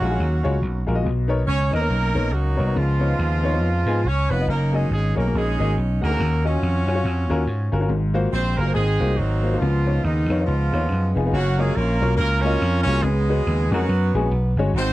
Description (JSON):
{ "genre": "uptempo gospel", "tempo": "140 BPM", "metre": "4/4", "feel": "swing 59% on 8ths", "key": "F# major", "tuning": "A4 = 440 Hz", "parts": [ { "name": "warm horn section", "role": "melody", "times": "0.0-14.9 s", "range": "D#3 to C#5", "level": "-24 LUFS", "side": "right 2 dB", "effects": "none" }, { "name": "clear upright piano", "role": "accompaniment", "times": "0.0-14.9 s", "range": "G#2 to F#5", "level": "-26 LUFS", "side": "left 4 dB", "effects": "none" }, { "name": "vintage slap bass", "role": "bass", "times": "0.0-14.9 s", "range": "E#1 to G#2", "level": "-21 LUFS", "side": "equal", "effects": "none" } ], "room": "little or no reverb", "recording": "dry, close 1970s-style studio recording", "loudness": "-18 LUFS", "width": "side -16 dB against mid", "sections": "0.0-11.3 A section; 11.3-14.9 B section", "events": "none", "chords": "0.0 D#m11; 1.0 Bmaj9; 2.8 C#9; 4.5 F#69; 6.2 D#m9; 7.9 G#13; 9.6 C#9; 11.3 F#maj7; 13.0 C#7sus4" }